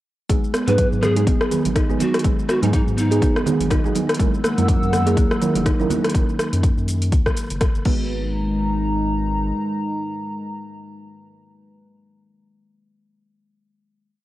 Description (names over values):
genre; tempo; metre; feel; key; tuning
afro house; 123 BPM; 4/4; swing 57% on 16ths; G# minor; A4 = 439 Hz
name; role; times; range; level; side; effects
kalimba; arpeggios; 0.3-8.3 s; D#3 to G#4; -25 LUFS; left 1 dB; sidechain pumping, cassette tape, analog delay
deep mellow chord stab; stabs; 0.3-11.9 s; F#3 to B4; -27 LUFS; right 6 dB; chorus, sidechain pumping, cassette tape, analog delay
round analog bass; bass; 0.3-9.5 s; D#1 to G#2; -24 LUFS; equal; sidechain pumping
deep house drum kit; drums; 0.3-8.0 s; crash cymbal, hi-hat, rim click, shaker; -26 LUFS; left 1 dB; overdrive, cassette tape
electronic kick drum; drums; 0.3-8.0 s; none; -20 LUFS; equal; overdrive, cassette tape
breathy large pan pipes; melody; 0.7-3.4 s; D#4 to B4; -24 LUFS; equal; analog delay
congas; percussion; 0.7-6.0 s; none; -29 LUFS; right 7 dB; none
dark analog pad; sustained chords; 4.2-11.9 s; G#3 to E6; -25 LUFS; left 1 dB; chorus, sidechain pumping, cassette tape
room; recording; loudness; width
moderate spring reverb, RT60 1.6 s, digital ambience; home recording on cassette; -17 LUFS; side -15 dB against mid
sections
0.3-8.1 groove; 8.1-12.0 final hit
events
band accent 8.0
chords
0.3 G#m7; 4.2 F#7; 7.9 G#m7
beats
| 0.29 0.78 1.27 1.76 | 2.25 2.73 3.22 3.71 | 4.20 4.68 5.17 5.66 | 6.15 6.63 7.12 7.61 | 8.10 8.59 9.07 9.56 | 10.05 10.54 11.03 11.51